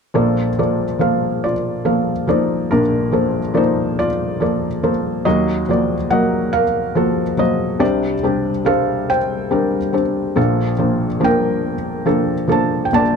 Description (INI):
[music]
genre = folk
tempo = 47 BPM (dotted quarters)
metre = 6/8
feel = straight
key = Bb major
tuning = A4 = 441 Hz
[part]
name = felt-muted upright piano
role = melody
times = 0.1-13.2 s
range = Bb1 to A5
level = -15 LUFS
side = equal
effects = none
[sound]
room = light reverb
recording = dark, warm production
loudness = -15 LUFS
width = side -6 dB against mid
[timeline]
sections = 0.2-13.2 A section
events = none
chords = 0.2 Bbmaj7; 5.3 Ebmadd9; 7.8 Csus2; 10.4 Bbmaj7